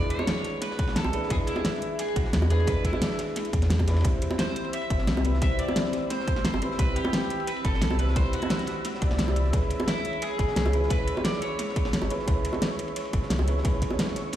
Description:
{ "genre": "liquid drum and bass", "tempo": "175 BPM", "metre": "4/4", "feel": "straight", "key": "unclear", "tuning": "A4 = 442 Hz", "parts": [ { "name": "electric guitar at the edge of break-up", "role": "melody", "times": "0.0-14.4 s", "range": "E4 to E5", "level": "-33 LUFS", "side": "equal", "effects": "lush chorus, ping-pong delay" }, { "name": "dark concert grand piano", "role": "accompaniment", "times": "0.0-14.4 s", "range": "G3 to D5", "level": "-32 LUFS", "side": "equal", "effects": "tape echo" }, { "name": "crunchy breakbeat drum kit", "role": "drums", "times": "0.1-14.4 s", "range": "ride cymbal, snare drum", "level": "-40 LUFS", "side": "equal", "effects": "high-pass filter on cymbals, high-pass filter on snare, high-pass filter on room" }, { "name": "pop drum kit", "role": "drums", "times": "0.1-14.4 s", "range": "hi-hat, snare drum", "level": "-30 LUFS", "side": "equal", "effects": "overdrive" }, { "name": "bongos", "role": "percussion", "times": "0.2-14.0 s", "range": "none", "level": "-33 LUFS", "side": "right 2 dB", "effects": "none" }, { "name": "electronic kick drum", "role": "drums", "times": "0.8-13.9 s", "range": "none", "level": "-27 LUFS", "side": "equal", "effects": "overdrive" }, { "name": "sub bass with octave", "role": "bass", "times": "1.1-13.7 s", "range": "G1 to E2", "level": "-26 LUFS", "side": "equal", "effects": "none" }, { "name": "glassy FM pad", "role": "sustained chords", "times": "4.3-14.4 s", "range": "C4 to E6", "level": "-36 LUFS", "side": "left 1 dB", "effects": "ensemble chorus, built-in reverb, sidechain pumping" } ], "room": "small room ambience", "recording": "played on a big sound system in a bare room, large studio reverb", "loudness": "-24 LUFS", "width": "side -12 dB against mid", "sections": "0.0-14.4 A section", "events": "none", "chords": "0.0 E7; 4.0 Cmaj7; 9.5 C#m7", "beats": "0.28 0.62 0.96 | 1.30 1.65 1.99 2.33 | 2.67 3.02 3.36 3.70 | 4.05 4.39 4.73 5.08 | 5.42 5.76 6.10 6.45 | 6.79 7.13 7.47 7.82 | 8.16 8.50 8.85 9.19 | 9.53 9.88 10.22 10.56 | 10.90 11.25 11.59 11.93 | 12.28 12.62 12.96 13.30 | 13.65 13.99 14.33" }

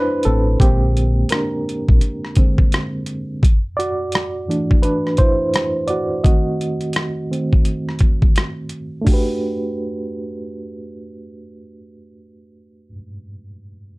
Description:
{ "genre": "lo-fi hip hop", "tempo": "85 BPM", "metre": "4/4", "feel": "swing 64% on 16ths", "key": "G major", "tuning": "A4 = 440 Hz", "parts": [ { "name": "barky reed electric piano", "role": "accompaniment", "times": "0.0-14.0 s", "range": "D3 to D#5", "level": "-21 LUFS", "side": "right 1 dB", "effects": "overdrive, fast tremolo, cassette tape, low-pass filter" }, { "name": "boom bap sampler-style drum kit", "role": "drums", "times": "0.2-9.3 s", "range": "hi-hat, kick drum, rim click", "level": "-15 LUFS", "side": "equal", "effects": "overdrive" }, { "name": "deep dub fingered electric bass", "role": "bass", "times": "0.3-2.0 s", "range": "A1 to Bb1", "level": "-17 LUFS", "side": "equal", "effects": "none" } ], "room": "light reverb", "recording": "dark, warm production", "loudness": "-16 LUFS", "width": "side -23 dB against mid", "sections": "0.0-9.1 A section; 9.1-11.9 B section", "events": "reed electric piano solo 0.0-9.1; filter sweep on reed electric piano 0.0-9.1", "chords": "0.0 Gmaj7 (rootless); 0.6 Bb9; 3.4 C69; 6.2 D#dim7; 9.1 Gmaj7", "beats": "| 0.60 1.30 2.01 2.71 | 3.42 4.13 4.83 5.54 | 6.24 6.95 7.66 8.36 | 9.07 9.77 10.48 11.19" }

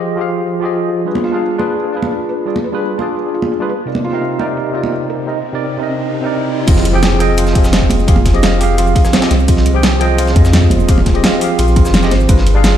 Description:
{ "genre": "liquid drum and bass", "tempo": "171 BPM", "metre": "4/4", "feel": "straight", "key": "F dorian", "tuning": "A4 = 440 Hz", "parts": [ { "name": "barky tine electric piano", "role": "accompaniment", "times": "0.0-12.8 s", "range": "C3 to G5", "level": "-17 LUFS", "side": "equal", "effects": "medium stereo tremolo, digital delay" }, { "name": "pop drum kit", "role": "drums", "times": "0.0-12.7 s", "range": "crash cymbal, hi-hat, rim click, shaker, snare drum", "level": "-17 LUFS", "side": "equal", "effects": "overdrive, low-pass filter on hats, low-pass filter on perc, low-pass filter on cymbals, low-pass filter on snare, low-pass filter on room" }, { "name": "felt-muted upright piano", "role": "arpeggios", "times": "1.2-12.8 s", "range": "C4 to F5", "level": "-22 LUFS", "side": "right 3 dB", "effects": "ping-pong delay" }, { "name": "congas", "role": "percussion", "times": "1.2-4.9, 7.9-8.2, 10.7-11.0 s", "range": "none", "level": "-22 LUFS", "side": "right 3 dB", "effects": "none" }, { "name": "riser and impact", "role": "sound effects", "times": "5.1-8.1 s", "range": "none", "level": "-24 LUFS", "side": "equal", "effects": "none" }, { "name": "warm sub bass", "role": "bass", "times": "6.7-12.8 s", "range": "Eb1 to F2", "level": "-14 LUFS", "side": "equal", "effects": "tube saturation" }, { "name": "breakbeat sampler-style drum kit", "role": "drums", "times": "6.7-12.7 s", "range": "ride cymbal, snare drum", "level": "-24 LUFS", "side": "right 1 dB", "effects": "high-pass filter on cymbals, high-pass filter on snare" }, { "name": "electronic kick drum", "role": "drums", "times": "6.7-12.4 s", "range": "none", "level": "-12 LUFS", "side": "equal", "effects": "overdrive" } ], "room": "light reverb", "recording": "played on a big sound system in a bare room, stone room reverb", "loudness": "-11 LUFS", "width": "side -10 dB against mid", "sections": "0.0-6.7 A section; 6.7-12.8 B section", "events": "riser 5.1-6.7; drop 6.7-12.8; impact 6.7-8.1", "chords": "0.0 Fm9; 1.1 G7b9; 3.9 Cm9; 6.7 Fm9", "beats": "0.01 0.36 0.71 | 1.06 1.41 1.76 2.12 | 2.47 2.82 3.17 3.52 | 3.87 4.22 4.57 4.92 | 5.27 5.62 5.97 6.33 | 6.68 7.03 7.38 7.73 | 8.08 8.43 8.78 9.13 | 9.48 9.84 10.19 10.54 | 10.89 11.24 11.59 11.94 | 12.29 12.64" }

